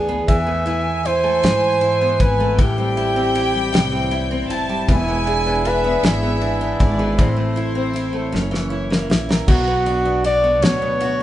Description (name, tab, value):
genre	six-eight pop ballad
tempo	52 BPM (dotted quarters)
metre	6/8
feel	straight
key	A harmonic minor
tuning	A4 = 440 Hz
part	picked steel-string acoustic guitar	accompaniment	0.0-11.2 s	F#2 to G#4	-24 LUFS	left 1 dB	none
part	direct-recorded clean electric guitar	arpeggios	0.0-11.2 s	E3 to A#4	-28 LUFS	right 4 dB	none
part	upright bass	bass	0.0-11.2 s	E1 to G#2	-24 LUFS	equal	none
part	warm flugelhorn	melody	0.3-11.2 s	E4 to E5	-20 LUFS	equal	none
part	warm studio violin section	second line	0.3-9.1 s	C5 to A5	-25 LUFS	equal	none
part	damped 70s drum kit	drums	0.3-11.2 s	crash cymbal, kick drum, ride cymbal, snare drum	-19 LUFS	equal	none
room	moderate large studio reverb, RT60 1.1 s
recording	band playing live in one room, nothing above 10.8 kHz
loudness	-16 LUFS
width	side -13 dB against mid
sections	0.0-9.5 A section; 9.5-11.2 A section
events	drum fill 8.3-9.5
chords	0.3 Esus4; 2.6 Am7; 4.9 E7; 7.2 Am; 8.3 F#7; 9.5 Bm